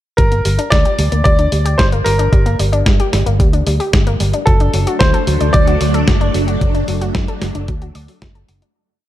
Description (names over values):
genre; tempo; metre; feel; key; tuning
italo disco; 112 BPM; 4/4; straight; G harmonic minor; A4 = 440 Hz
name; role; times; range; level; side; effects
clear grand piano; melody; 0.2-8.2 s; A4 to D5; -19 LUFS; equal; tape echo
analog pluck; arpeggios; 0.2-8.7 s; F#3 to D5; -22 LUFS; left 2 dB; chorus, tape echo
fingered electric bass; bass; 0.2-8.6 s; F#1 to G2; -17 LUFS; equal; none
detuned 8-bit digital drum machine; drums; 0.2-8.7 s; hi-hat, snare drum; -22 LUFS; equal; small room ambience
electronic kick drum; drums; 0.2-8.3 s; none; -14 LUFS; equal; small room ambience
phased string machine; sustained chords; 4.5-8.7 s; F#3 to D4; -21 LUFS; equal; ensemble chorus, phaser
room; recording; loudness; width
light reverb, digital ambience; dark, warm production; -12 LUFS; side -13 dB against mid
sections
0.2-8.8 verse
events
fade-out 5.9-8.8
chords
0.2 Gm; 4.5 D/F#